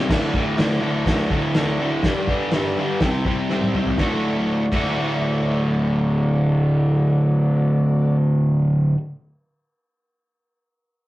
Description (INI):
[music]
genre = garage rock duo or trio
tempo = 122 BPM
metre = 4/4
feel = straight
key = D mixolydian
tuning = A4 = 437 Hz
[part]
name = overdriven combo organ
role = sustained chords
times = 0.0-8.2 s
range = D4 to E5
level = -30 LUFS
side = equal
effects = none
[part]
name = crunchy overdriven guitar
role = riff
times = 0.0-9.0 s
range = D2 to F#4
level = -18 LUFS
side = equal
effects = none
[part]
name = cloth-damped thuddy drum kit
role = drums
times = 0.1-4.9 s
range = crash cymbal, hi-hat, kick drum, snare drum, toms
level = -24 LUFS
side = equal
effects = none
[sound]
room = wet studio reverb, RT60 0.7 s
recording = rough rehearsal-room recording, tube saturation, nothing above 10.6 kHz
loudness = -18 LUFS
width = side -16 dB against mid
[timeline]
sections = 0.1-4.0 A section; 4.0-7.9 B section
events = drum fill 3.5-4.0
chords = 0.1 D; 2.0 G; 3.0 C; 4.0 D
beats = | 0.09 0.57 1.06 1.54 | 2.03 2.52 3.01 3.50 | 3.99 4.48 4.97 5.46 | 5.95 6.44 6.93 7.42